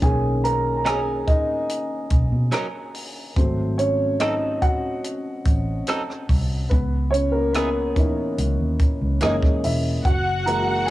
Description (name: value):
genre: lush 1970s-style soul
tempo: 72 BPM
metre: 4/4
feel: straight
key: B major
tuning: A4 = 440 Hz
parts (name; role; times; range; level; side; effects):
- dark grand piano; accompaniment; 0.0-10.9 s; D#3 to A#5; -23 LUFS; equal; cassette tape
- vintage muted fingered electric bass; bass; 0.0-10.9 s; E1 to B2; -24 LUFS; equal; none
- compact cocktail drum kit; drums; 0.0-10.9 s; hi-hat, kick drum, rim click; -23 LUFS; equal; cassette tape
- direct-recorded clean electric guitar; riff; 0.8-9.4 s; E3 to A#4; -30 LUFS; right 4 dB; spring reverb, cassette tape
- dark studio string section; second line; 10.0-10.9 s; F#4 to F#5; -23 LUFS; equal; cassette tape
room: little or no reverb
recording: home recording on cassette, small room ambience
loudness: -19 LUFS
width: side -16 dB against mid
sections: 0.0-10.0 A section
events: grand piano solo 0.0-10.0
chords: 0.0 Bmaj9; 3.4 G#7b9; 6.7 C#m9; 9.2 F#13; 10.0 F#7